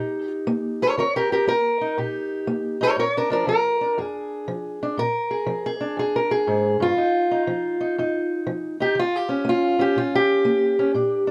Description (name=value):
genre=acoustic country blues, solo or duo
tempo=120 BPM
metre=4/4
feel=swing 66% on 8ths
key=unclear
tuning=A4 = 442 Hz
part: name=fingerpicked steel-string acoustic guitar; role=solo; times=0.0-11.3 s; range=F2 to Db5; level=-22 LUFS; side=equal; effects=none
room=moderate studio ambience, RT60 0.5 s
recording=none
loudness=-23 LUFS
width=mono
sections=0.0-11.3 A section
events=steel-string acoustic guitar solo 0.0-11.3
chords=0.0 Eb; 3.0 Bb7; 7.0 Ebsus2/F; 9.0 Eb7